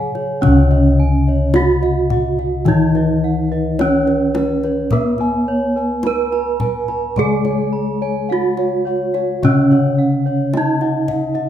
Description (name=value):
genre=Javanese gamelan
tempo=53 BPM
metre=4/4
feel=straight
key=Db slendro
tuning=A4 = 440 Hz
part: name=gamelan-type bronze metallophone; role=melody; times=0.0-11.5 s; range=Cb4-45c to Cb5-45c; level=-18 LUFS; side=right 4 dB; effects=none
part: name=gamelan-type bronze metallophone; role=accompaniment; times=0.0-11.5 s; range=Db3 to Cb4-45c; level=-20 LUFS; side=left 4 dB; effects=none
part: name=gamelan-type bossed gongs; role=arpeggios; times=0.0-11.5 s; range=Cb5-45c to Cb6-45c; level=-25 LUFS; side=left 6 dB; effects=none
part: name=gamelan-type bronze metallophone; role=arpeggios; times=0.0-11.5 s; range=Cb5-45c to Cb6-45c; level=-25 LUFS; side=right 3 dB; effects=none
part: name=gamelan-type bossed gongs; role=bass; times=0.0-11.5 s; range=Db2 to Cb5-45c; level=-21 LUFS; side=equal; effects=none
part: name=kendang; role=percussion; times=0.1-11.5 s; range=none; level=-23 LUFS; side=left 2 dB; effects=none
room=moderate recital hall reverb, RT60 1.4 s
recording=minimal, uncompressed stereo recording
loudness=-14 LUFS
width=side -10 dB against mid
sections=0.4-11.5 A section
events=none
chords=none